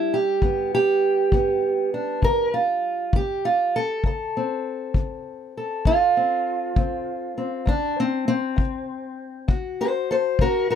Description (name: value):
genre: acoustic country blues, solo or duo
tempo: 66 BPM (dotted quarters)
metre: 12/8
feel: straight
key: G mixolydian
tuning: A4 = 440 Hz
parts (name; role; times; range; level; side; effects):
- fingerpicked steel-string acoustic guitar; melody; 0.0-10.8 s; D2 to C5; -21 LUFS; right 1 dB; none
- kick drum; drums; 0.4-10.5 s; none; -22 LUFS; left 2 dB; none
room: little or no reverb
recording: none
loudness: -20 LUFS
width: side -8 dB against mid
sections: 0.0-10.8 A section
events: steel-string acoustic guitar solo 0.0-10.8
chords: 0.0 G7; 4.0 D7(no3)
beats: | 0.42 1.33 2.23 3.14 | 4.04 4.95 5.85 6.76 | 7.67 8.58 9.48 10.39